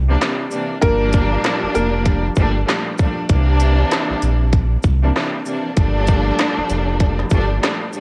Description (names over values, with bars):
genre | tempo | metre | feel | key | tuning
hip hop, boom-bap hip-hop | 97 BPM | 4/4 | swing 58% on 16ths | G dorian | A4 = 442 Hz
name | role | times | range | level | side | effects
sub bass with octave | bass | 0.0-7.6 s | F1 to C2 | -20 LUFS | equal | transformer saturation
warm studio string section | accompaniment | 0.1-8.0 s | Bb2 to D4 | -23 LUFS | equal | high-pass filter, low-pass filter
organic electronic drum kit | drums | 0.2-8.0 s | handclaps, hi-hat, kick drum, shaker, snare drum | -21 LUFS | equal | overdrive, cassette tape
clear upright piano | melody | 0.8-2.2 s | Bb3 to Bb4 | -25 LUFS | equal | high-pass filter, low-pass filter, analog delay
room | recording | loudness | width
little or no reverb | home recording on cassette | -18 LUFS | mono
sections
0.0-8.0 A section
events
none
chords
0.0 C7; 0.8 Gm7; 3.3 C7; 5.8 Gm7